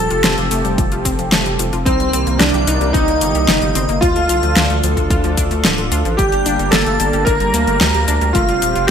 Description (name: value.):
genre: synthwave.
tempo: 111 BPM.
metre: 4/4.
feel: straight.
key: G minor.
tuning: A4 = 440 Hz.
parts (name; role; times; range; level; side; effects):
warm electric grand piano; melody; 0.0-8.9 s; C4 to Bb4; -20 LUFS; right 1 dB; ensemble chorus, ping-pong delay.
airy dreamy lead; second line; 0.0-8.9 s; C5 to Bb5; -21 LUFS; equal; chorus, cassette tape, digital delay.
chorused pulse-width pad; sustained chords; 0.0-8.9 s; C3 to A4; -22 LUFS; right 1 dB; sidechain pumping.
round analog bass; bass; 0.0-8.9 s; D1 to D2; -20 LUFS; equal; sidechain pumping.
analog pluck; arpeggios; 0.1-8.8 s; F3 to A4; -24 LUFS; left 3 dB; chorus, digital delay.
pop drum kit; drums; 0.1-8.9 s; hi-hat, shaker, snare drum; -18 LUFS; left 1 dB; none.
electronic kick drum; drums; 0.8-8.5 s; none; -19 LUFS; equal; none.
room: moderate plate reverb, RT60 1.4 s, digital ambience.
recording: bright 1980s-style digital production.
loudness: -13 LUFS.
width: side -8 dB against mid.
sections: 0.0-8.9 A section.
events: none.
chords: 0.0 Fadd9; 1.9 Cm7; 4.0 Dm; 6.2 Gmadd9; 8.3 Fadd9.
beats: 0.24 0.78 1.32 | 1.86 2.40 2.94 3.48 | 4.02 4.57 5.11 5.65 | 6.19 6.73 7.27 7.81 | 8.35 8.89.